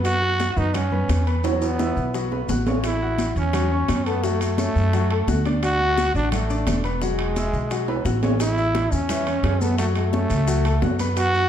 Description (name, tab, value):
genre	latin, salsa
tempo	173 BPM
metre	4/4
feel	straight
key	A major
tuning	A4 = 440 Hz
part	growling trombone	melody	0.0-11.5 s	G#3 to F#4	-25 LUFS	right 2 dB	none
part	clear baby grand piano	accompaniment	0.0-11.5 s	E3 to F#6	-28 LUFS	left 5 dB	none
part	upright bass	bass	0.0-11.5 s	E1 to F#2	-23 LUFS	equal	none
part	maracas	percussion	0.0-11.5 s	none	-38 LUFS	left 3 dB	none
part	timbales	percussion	0.0-11.3 s	none	-31 LUFS	right 5 dB	none
part	bongos	percussion	0.1-11.3 s	none	-34 LUFS	left 6 dB	none
part	congas	percussion	0.1-11.5 s	none	-30 LUFS	left 1 dB	none
room	moderate large studio reverb, RT60 1.3 s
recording	dark, warm production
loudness	-19 LUFS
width	side -9 dB against mid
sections	0.0-8.4 A section; 8.4-11.5 A section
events	drum fill 1.4-2.8, 7.9-8.4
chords	0.0 B5/F#; 1.4 Esus2; 2.8 A6; 4.2 F#m; 5.6 Dadd9; 7.0 Eadd9; 8.4 A; 9.8 F#m